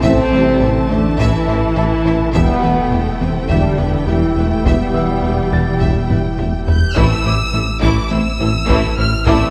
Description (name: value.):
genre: cinematic, hybrid orchestral and electronic film score.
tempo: 104 BPM.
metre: 4/4.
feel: straight.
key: A minor.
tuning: A4 = 439 Hz.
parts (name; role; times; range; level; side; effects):
warm symphonic violin section; melody; 0.0-9.5 s; G5 to G6; -27 LUFS; equal; none.
warm symphonic violin section; second line; 0.0-9.5 s; A3 to E5; -28 LUFS; equal; none.
rich symphonic viola section; accompaniment; 0.0-9.5 s; E3 to E4; -26 LUFS; equal; none.
deep dark ambient pad; sustained chords; 0.0-9.5 s; E3 to E5; -28 LUFS; equal; none.
mellow French horn section; sustained chords; 0.0-9.5 s; B3 to E4; -22 LUFS; equal; none.
rubbery square bass; riff; 0.0-9.4 s; E2 to A3; -23 LUFS; equal; none.
dark tuba; bass; 0.0-9.4 s; E1 to A1; -26 LUFS; equal; none.
rich symphonic double bass section; bass; 0.0-9.3 s; A1 to E2; -28 LUFS; equal; none.
sub bass with octave; bass; 0.0-9.5 s; E1 to A1; -26 LUFS; equal; none.
warm symphonic cello section; bass; 0.0-9.3 s; A2 to E3; -27 LUFS; equal; none.
taiko ensemble; drums; 0.0-9.5 s; none; -23 LUFS; equal; none.
clear concert grand piano; texture; 0.0-9.5 s; D5 to A6; -33 LUFS; equal; tape echo.
room: wet scoring stage reverb, RT60 1.6 s.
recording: none.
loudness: -15 LUFS.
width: mono.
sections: 0.0-7.0 A section; 7.0-9.5 B section.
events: drum fill 6.1-7.0.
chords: 0.0 Am; 2.3 Em; 7.0 Am.